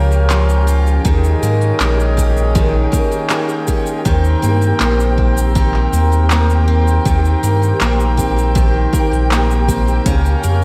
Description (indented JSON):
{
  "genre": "folktronica",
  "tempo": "80 BPM",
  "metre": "4/4",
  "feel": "straight",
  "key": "unclear",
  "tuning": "A4 = 445 Hz",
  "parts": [
    { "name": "hand-pumped harmonium", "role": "sustained chords", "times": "0.0-10.6 s", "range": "Ab3 to G5", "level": "-24 LUFS", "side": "equal", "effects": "none" },
    { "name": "picked twelve-string acoustic guitar", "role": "arpeggios", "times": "0.0-10.6 s", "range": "Db3 to F4", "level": "-22 LUFS", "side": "equal", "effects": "tape echo" },
    { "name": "warm sub bass", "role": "bass", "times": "0.0-10.6 s", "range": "Bb1 to Ab2", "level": "-17 LUFS", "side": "equal", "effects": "none" },
    { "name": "flickering grainy texture", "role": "texture", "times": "0.0-10.6 s", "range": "G4 to G5", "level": "-29 LUFS", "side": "equal", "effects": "built-in reverb" },
    { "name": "organic electronic drum kit", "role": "drums", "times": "0.1-10.6 s", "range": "handclaps, hi-hat, shaker", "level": "-26 LUFS", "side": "equal", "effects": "overdrive" },
    { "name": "electronic kick drum", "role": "drums", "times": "1.1-10.2 s", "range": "none", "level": "-20 LUFS", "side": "equal", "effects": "overdrive" }
  ],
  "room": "moderate lush hall reverb, RT60 2.6 s",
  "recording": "dreamy mix soaked in reverb",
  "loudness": "-15 LUFS",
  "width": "mono",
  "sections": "0.0-10.6 A section",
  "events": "none",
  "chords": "0.0 Db6; 1.1 Eb7sus4; 4.1 Eb6/Bb; 10.1 Db6"
}